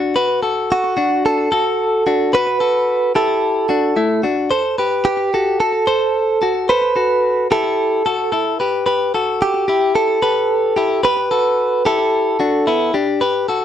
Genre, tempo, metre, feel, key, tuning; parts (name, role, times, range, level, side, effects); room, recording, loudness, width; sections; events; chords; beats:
indie pop; 110 BPM; 4/4; straight; A4 = 440 Hz
direct-recorded clean electric guitar; arpeggios; 0.0-13.6 s; A3 to C5; -18 LUFS; left 2 dB; slapback echo
direct-recorded clean electric guitar; melody; 0.7-12.9 s; F#4 to B4; -16 LUFS; right 2 dB; slapback echo
moderate booth ambience, RT60 0.2 s; dry, close 1970s-style studio recording; -14 LUFS; side -10 dB against mid
0.2-13.6 A section
0.2 Dadd9; 4.5 Am; 8.9 Em; 12.9 Gsus2
| 0.15 0.70 1.25 1.79 | 2.33 2.88 3.42 3.97 | 4.51 5.05 5.60 6.14 | 6.69 7.23 7.78 8.32 | 8.86 9.41 9.95 10.49 | 11.04 11.58 12.12 12.67 | 13.21